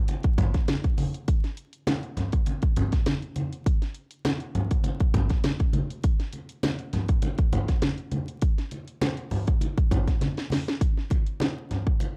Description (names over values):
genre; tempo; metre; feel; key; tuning
funk; 101 BPM; 4/4; straight; none; none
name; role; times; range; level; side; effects
house drum kit; drums; 0.1-12.2 s; hi-hat, kick drum, snare drum; -27 LUFS; equal; none
congas; percussion; 0.1-12.2 s; none; -32 LUFS; equal; none
room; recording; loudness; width
digital ambience; dry, close 1970s-style studio recording, vinyl crackle; -26 LUFS; mono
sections
0.0-10.8 A section; 10.8-12.2 B section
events
drum fill 10.2-10.8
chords
none